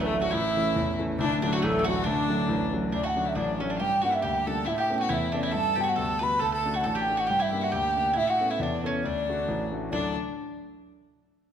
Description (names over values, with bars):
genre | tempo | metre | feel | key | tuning
celtic folk, Celtic polka | 137 BPM | 2/4 | swing 55% on 8ths | D major | A4 = 440 Hz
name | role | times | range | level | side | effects
mellow hollow wooden flute | melody | 0.0-10.1 s | D4 to B5 | -28 LUFS | right 1 dB | none
mandolin | second line | 0.0-10.1 s | A3 to B4 | -33 LUFS | right 4 dB | none
rich fiddle | second line | 0.0-10.1 s | A3 to B4 | -34 LUFS | left 7 dB | none
clear concert grand piano | accompaniment | 0.0-10.1 s | D1 to A4 | -29 LUFS | left 1 dB | none
room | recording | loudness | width
wet recital hall reverb, RT60 1.6 s | none | -24 LUFS | side -8 dB against mid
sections
0.0-2.9 A section; 2.9-9.9 B section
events
none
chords
0.3 A; 1.2 D; 3.8 Gm; 4.7 Aadd9; 5.5 Gmaj7; 6.4 D; 7.3 Gm; 8.2 Aadd9; 9.0 D